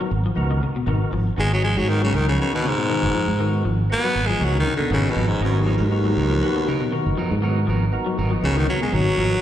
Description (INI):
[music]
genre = afrobeat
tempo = 119 BPM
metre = 4/4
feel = swing 54% on 16ths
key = G# dorian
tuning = A4 = 439 Hz
[part]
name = percussive tonewheel organ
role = accompaniment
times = 0.0-9.2 s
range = B3 to B4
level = -31 LUFS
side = right 1 dB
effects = slow rotary speaker, slapback echo
[part]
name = electric guitar at the edge of break-up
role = arpeggios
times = 0.0-9.3 s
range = B2 to F#3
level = -27 LUFS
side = left 4 dB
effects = ensemble chorus, slapback echo
[part]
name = fingered electric bass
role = bass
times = 0.1-9.3 s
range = F#1 to G#2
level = -21 LUFS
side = right 1 dB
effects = none
[part]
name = raspy baritone saxophone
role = melody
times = 1.4-9.4 s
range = D#2 to B3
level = -22 LUFS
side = equal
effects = slapback echo
[part]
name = electric guitar at the edge of break-up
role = stabs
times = 4.9-9.4 s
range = F#3 to A#4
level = -30 LUFS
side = right 6 dB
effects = spring reverb, slapback echo
[sound]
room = light reverb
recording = live gig heard through the venue's PA, recital hall reverb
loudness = -18 LUFS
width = side -11 dB against mid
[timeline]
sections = 0.0-9.4 A section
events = baritone saxophone solo 0.0-9.4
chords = 0.0 G#m9